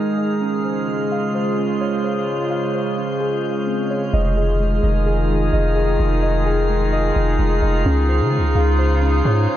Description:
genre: hip hop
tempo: 129 BPM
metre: 4/4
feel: half-time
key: unclear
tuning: A4 = 440 Hz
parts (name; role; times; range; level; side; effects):
- warbly tape-like pad; sustained chords; 0.0-9.6 s; Db3 to Ab4; -20 LUFS; right 1 dB; chorus, built-in reverb, low-pass filter
- muted felt-like synth keys; arpeggios; 0.0-9.6 s; Ab3 to F5; -25 LUFS; equal; chorus, low-pass filter, digital delay
- drifting glass-harmonics texture; texture; 0.0-9.6 s; Db4 to F5; -29 LUFS; equal; chorus, built-in reverb
- long sustained 808-style bass; bass; 4.1-9.5 s; F1 to Db3; -18 LUFS; equal; none
room: light reverb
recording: nothing above 10.5 kHz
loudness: -16 LUFS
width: side -12 dB against mid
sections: 0.0-4.1 A section; 4.1-9.6 B section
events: none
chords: 0.4 Dbmaj7; 4.1 Fm7; 7.9 Dbmaj7

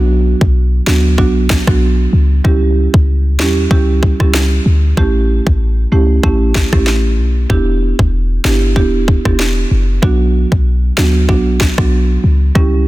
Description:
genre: dancehall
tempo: 95 BPM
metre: 4/4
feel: swing 56% on 16ths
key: B minor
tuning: A4 = 440 Hz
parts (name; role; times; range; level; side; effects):
- marimba with soft mallets; accompaniment; 0.0-12.9 s; F#3 to G4; -17 LUFS; right 4 dB; none
- clean 808-style bass; bass; 0.0-12.9 s; E1 to E2; -12 LUFS; equal; none
- island pop drum kit; drums; 0.4-12.7 s; kick drum, rim click, snare drum; -14 LUFS; equal; none
room: digital ambience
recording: dense, heavily limited modern master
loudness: -10 LUFS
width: side -17 dB against mid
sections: 0.0-12.9 A section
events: none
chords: 0.0 Bm; 2.4 C#dim; 5.0 A7; 7.5 Em7; 10.0 Bm

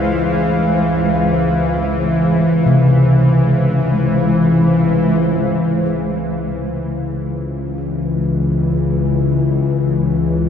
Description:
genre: dark ambient drone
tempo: free time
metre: none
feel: none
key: C# harmonic minor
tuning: A4 = 440 Hz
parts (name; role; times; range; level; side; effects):
- granular cloud pad; sustained chords; 0.0-5.2 s; G#3 to F5; -21 LUFS; right 1 dB; built-in reverb
- gamelan-type bossed gongs; arpeggios; 0.0-10.5 s; F2 to G#4; -19 LUFS; left 1 dB; diffuse ambient delay
- bowed-like drone; drone; 0.0-10.5 s; C#2 to E3; -15 LUFS; left 1 dB; built-in reverb
- bronze singing bowl; texture; 0.0-5.3 s; Ab4; -37 LUFS; equal; none
room: wet huge ambient reverb, RT60 8.1 s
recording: in a vast, echoing space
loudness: -14 LUFS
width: side -8 dB against mid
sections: 0.0-5.2 A section; 5.2-10.5 B section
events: filter sweep on synth drone 5.2-10.5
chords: 0.0 Fm; 5.2 C#mmaj7

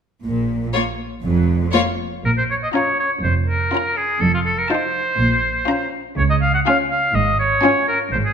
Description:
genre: cinematic, playful, whimsical film cue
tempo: 122 BPM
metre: 4/4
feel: straight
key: Bb minor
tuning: A4 = 440 Hz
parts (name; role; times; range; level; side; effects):
- clear chamber double bass section; bass; 0.2-8.3 s; F1 to Db2; -22 LUFS; right 3 dB; none
- rich symphonic cello section; bass; 0.2-8.3 s; F2 to Db3; -24 LUFS; right 2 dB; none
- rich chamber violin section; melody; 0.7-8.0 s; Db5 to Bb5; -26 LUFS; left 5 dB; none
- rich chamber violin section; second line; 0.7-8.0 s; F4; -26 LUFS; left 4 dB; none
- rich chamber viola section; accompaniment; 0.7-8.0 s; Bb3 to Eb4; -24 LUFS; left 1 dB; none
- clear oboe; second line; 2.3-8.3 s; F4 to Gb5; -18 LUFS; equal; none
room: moderate scoring stage reverb, RT60 1.5 s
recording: minimal, uncompressed stereo recording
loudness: -16 LUFS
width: side -7 dB against mid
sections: 0.2-2.2 A section; 2.2-8.3 B section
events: none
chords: 0.2 Bb5; 2.2 Bbm; 4.2 F7; 5.2 Bbm; 6.2 Db

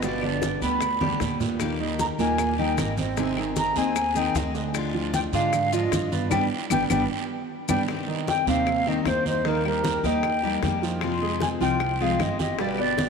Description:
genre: latin, Cuban son and guajira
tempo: 153 BPM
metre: 4/4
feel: straight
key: C minor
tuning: A4 = 440 Hz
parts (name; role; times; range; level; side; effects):
- mellow silver concert flute; melody; 0.0-13.1 s; Bb4 to B5; -27 LUFS; left 2 dB; none
- picked steel-string acoustic guitar; accompaniment; 0.0-13.1 s; B2 to Ab4; -30 LUFS; left 10 dB; none
- warm grand piano; arpeggios; 0.0-13.1 s; Bb2 to G5; -28 LUFS; right 9 dB; none
- upright bass; bass; 0.0-13.1 s; G1 to Ab2; -31 LUFS; right 1 dB; none
- bongos; percussion; 0.0-13.1 s; none; -36 LUFS; left 10 dB; none
- congas; percussion; 0.0-13.1 s; none; -32 LUFS; equal; none
- guiro; percussion; 0.0-13.1 s; none; -38 LUFS; right 14 dB; none
- maracas; percussion; 0.0-7.8 s; none; -38 LUFS; left 12 dB; none
- claves; percussion; 0.2-13.0 s; none; -38 LUFS; left 10 dB; none
room: wet plate reverb, RT60 3.2 s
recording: 1960s-style stereo with parts hard left and right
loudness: -22 LUFS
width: side -5 dB against mid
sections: 0.0-7.9 A section; 7.9-13.1 A section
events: drum fill 1.0-1.6, 7.3-7.9; band accent 6.3-7.9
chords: 0.0 G; 1.6 Eb; 3.2 Ab; 4.7 Ddim; 6.3 G; 7.9 Cm; 9.5 Eb; 11.0 Fm; 12.6 G

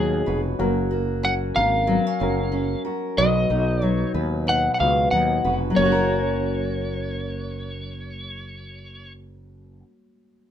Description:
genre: acoustic pop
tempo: 93 BPM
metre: 4/4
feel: swing 55% on 16ths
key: F# major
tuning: A4 = 441 Hz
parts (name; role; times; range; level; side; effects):
- electric slide guitar; melody; 0.0-9.1 s; G#4 to F#5; -24 LUFS; left 1 dB; none
- fingerpicked steel-string acoustic guitar; accompaniment; 0.0-9.9 s; B2 to B4; -26 LUFS; left 4 dB; none
- reed electric piano; accompaniment; 0.0-10.5 s; A#3 to C#5; -31 LUFS; left 4 dB; none
- nylon-string guitar; arpeggios; 0.0-9.9 s; D#3 to F#4; -30 LUFS; right 8 dB; none
- fretless electric bass; bass; 0.0-9.8 s; E#1 to D#2; -27 LUFS; right 1 dB; none
room: moderate small room reverb, RT60 0.6 s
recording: minimal, uncompressed stereo recording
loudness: -20 LUFS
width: side -9 dB against mid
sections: 0.0-5.8 A section; 5.8-8.4 B section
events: none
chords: 0.0 B; 0.6 F#; 3.2 B; 5.8 F#

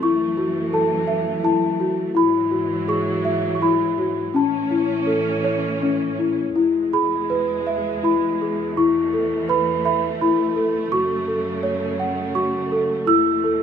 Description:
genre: children's music, lullaby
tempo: 83 BPM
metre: 3/4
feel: rubato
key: A major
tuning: A4 = 443 Hz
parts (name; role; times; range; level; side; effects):
- worn celesta; melody; 0.0-13.6 s; C#4 to E6; -19 LUFS; left 1 dB; none
- rich studio string section; sustained chords; 0.0-13.6 s; E2 to C#4; -27 LUFS; right 2 dB; none
room: light reverb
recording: minimal, uncompressed stereo recording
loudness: -18 LUFS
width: side -8 dB against mid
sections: 0.0-6.6 A section; 6.6-13.6 B section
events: none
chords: 0.0 F#m7; 2.2 Eadd9; 4.3 A; 6.6 E; 8.8 Asus2/E; 10.9 F#m; 13.1 Esus4

